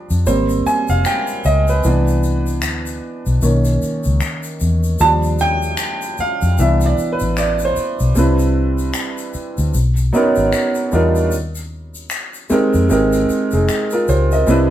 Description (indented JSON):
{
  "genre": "R&B, neo-soul",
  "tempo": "76 BPM",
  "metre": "4/4",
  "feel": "swing 59% on 16ths",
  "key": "unclear",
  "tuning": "A4 = 445 Hz",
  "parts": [
    { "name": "warm upright piano", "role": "accompaniment", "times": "0.0-14.7 s", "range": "D#3 to A5", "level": "-17 LUFS", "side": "right 2 dB", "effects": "none" },
    { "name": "vintage muted fingered electric bass", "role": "bass", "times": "0.1-14.7 s", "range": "F1 to F2", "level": "-17 LUFS", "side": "left 1 dB", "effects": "none" },
    { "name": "tube shaker and finger snaps", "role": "percussion", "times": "0.1-14.7 s", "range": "none", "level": "-28 LUFS", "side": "left 4 dB", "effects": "none" }
  ],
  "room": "moderate studio reverb, RT60 0.8 s",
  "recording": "band playing live in one room",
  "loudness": "-14 LUFS",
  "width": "side -12 dB against mid",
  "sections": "0.0-8.2 A section; 8.2-14.7 B section",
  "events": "upright piano solo 0.0-8.2",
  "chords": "0.3 Abmaj9; 1.8 Cmaj9; 3.4 Bmaj9; 5.0 Ebmaj9; 6.6 Cmaj9; 9.7 Bmaj9; 11.3 Eb; 12.9 Abmaj9"
}